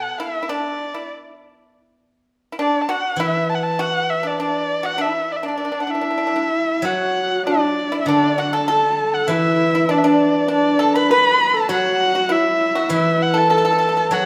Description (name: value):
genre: chinese traditional, Chinese chamber ensemble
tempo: 100 BPM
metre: 4/4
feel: rubato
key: D gong mode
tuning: A4 = 440 Hz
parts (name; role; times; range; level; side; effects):
- warm erhu; melody; 0.0-14.3 s; D5 to B5; -22 LUFS; equal; none
- pipa; second line; 0.0-14.3 s; D4 to B4; -24 LUFS; equal; none
- steel-string zither; accompaniment; 3.2-14.3 s; D3 to F#3; -27 LUFS; equal; none
- dark horsehead fiddle; second line; 5.9-14.3 s; D4 to B4; -23 LUFS; equal; none
room: wet recital hall reverb, RT60 1.5 s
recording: none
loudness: -19 LUFS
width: mono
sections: 0.0-6.8 A section; 6.8-14.3 B section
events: none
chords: none